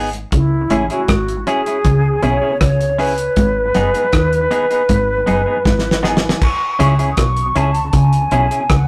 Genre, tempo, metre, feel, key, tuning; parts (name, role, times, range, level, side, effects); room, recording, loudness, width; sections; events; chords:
roots reggae; 79 BPM; 4/4; straight; C# minor; A4 = 440 Hz
semi-hollow electric guitar; accompaniment; 0.0-8.6 s; B3 to G#4; -22 LUFS; equal
deep dub fingered electric bass; bass; 0.0-8.9 s; F#1 to D#2; -23 LUFS; equal
cloth-damped thuddy drum kit; drums; 0.1-8.9 s; crash cymbal, hi-hat, kick drum, rim click, snare drum; -21 LUFS; equal
mellow hollow silver concert flute; melody; 0.3-8.9 s; E4 to D#6; -20 LUFS; equal; tape echo
semi-hollow electric guitar; riff; 0.3-8.9 s; F#2 to D#3; -21 LUFS; equal; tape echo
wet studio reverb, RT60 0.5 s; rough rehearsal-room recording, tube saturation; -16 LUFS; mono
0.0-6.4 A section; 6.4-8.9 B section
drum fill 5.7-6.4
0.3 C#m; 3.4 G#m; 6.4 C#m